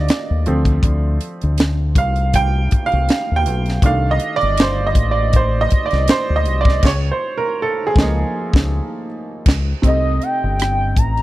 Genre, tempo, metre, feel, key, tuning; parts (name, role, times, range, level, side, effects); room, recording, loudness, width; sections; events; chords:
R&B, neo-soul; 80 BPM; 4/4; swing 54% on 16ths; C dorian; A4 = 440 Hz
bright upright piano; accompaniment; 0.0-11.2 s; C3 to G5; -20 LUFS; right 3 dB
deep dub fingered electric bass; bass; 0.0-11.2 s; G1 to Eb2; -18 LUFS; left 1 dB
tight funk drum kit; drums; 0.1-11.2 s; crash cymbal, hi-hat, kick drum, rim click, snare drum; -16 LUFS; equal
gliding portamento lead; melody; 9.9-11.2 s; Eb5 to Bb5; -20 LUFS; left 1 dB; chorus
small room reverb; dry, close 1970s-style studio recording; -15 LUFS; side -16 dB against mid
0.0-9.8 A section; 9.8-11.2 B section
upright piano solo 0.0-9.8; band accent 6.8-9.8
0.5 Dm7; 3.8 Cm69; 6.8 Db69; 9.8 Cm6